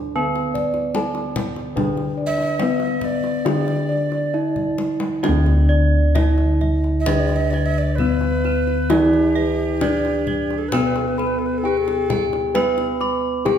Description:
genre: Javanese gamelan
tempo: 67 BPM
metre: 4/4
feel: uneven beats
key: D pelog barang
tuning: A4 = 441 Hz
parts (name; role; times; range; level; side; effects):
- gamelan-type bronze metallophone; melody; 0.0-13.6 s; B3+20c to B4+20c; -23 LUFS; left 1 dB; none
- gamelan-type bronze metallophone; accompaniment; 0.0-13.6 s; D3 to D4; -27 LUFS; left 1 dB; none
- gamelan-type bossed gongs; bass; 0.0-13.6 s; D2 to D5; -22 LUFS; equal; none
- gamelan-type bossed gongs; arpeggios; 0.2-13.6 s; B4+20c to D6; -28 LUFS; left 3 dB; none
- kendang; percussion; 0.4-13.6 s; none; -28 LUFS; left 3 dB; none
- breathy mellow tenor recorder; second line; 2.3-12.3 s; G4+31c to E5-48c; -26 LUFS; right 3 dB; none
- gamelan-type bronze metallophone; arpeggios; 5.2-13.6 s; B4+20c to B5+20c; -29 LUFS; right 5 dB; none
room: wet recital hall reverb, RT60 1.7 s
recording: recorded in a church or concert hall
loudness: -17 LUFS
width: side -9 dB against mid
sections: 0.0-5.2 A section; 5.2-13.6 B section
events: drum fill 4.6-5.2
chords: none

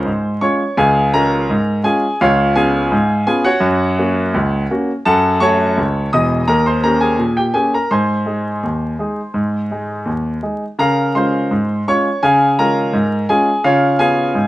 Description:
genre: ragtime piano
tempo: 84 BPM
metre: 2/4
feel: straight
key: Db major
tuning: A4 = 442 Hz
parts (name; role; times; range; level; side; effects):
- clear grand piano; solo; 0.0-14.5 s; Fb1 to Eb6; -13 LUFS; equal; none
room: moderate studio reverb, RT60 0.5 s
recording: vinyl crackle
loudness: -13 LUFS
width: side -16 dB against mid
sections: 0.0-14.5 A section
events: none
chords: 0.0 Db; 2.2 Db7; 3.6 Gb; 5.1 Gbm; 6.5 Eb7; 7.9 Ab; 10.8 Db; 13.6 Db7

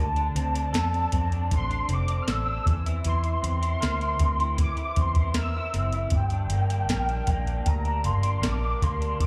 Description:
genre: indie pop, bedroom pop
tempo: 78 BPM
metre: 4/4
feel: straight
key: unclear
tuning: A4 = 440 Hz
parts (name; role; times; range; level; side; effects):
- warm velvety synth lead; melody; 0.0-9.3 s; G5 to F6; -32 LUFS; equal; ensemble chorus, slapback echo, tape echo
- electric guitar through a small old amp; accompaniment; 0.0-9.3 s; G2 to Bb4; -37 LUFS; equal; lush chorus, vibrato effect, slapback echo
- vintage muted fingered electric bass; bass; 0.0-9.3 s; F1 to F2; -29 LUFS; equal; none
- soft vintage rhythm box; drums; 0.2-9.3 s; hi-hat, kick drum, snare drum; -29 LUFS; equal; none
room: light reverb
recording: live gig heard through the venue's PA, club reverb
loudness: -26 LUFS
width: mono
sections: 0.0-9.3 A section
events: none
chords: 0.0 Dm7; 2.7 C7; 6.1 Gm

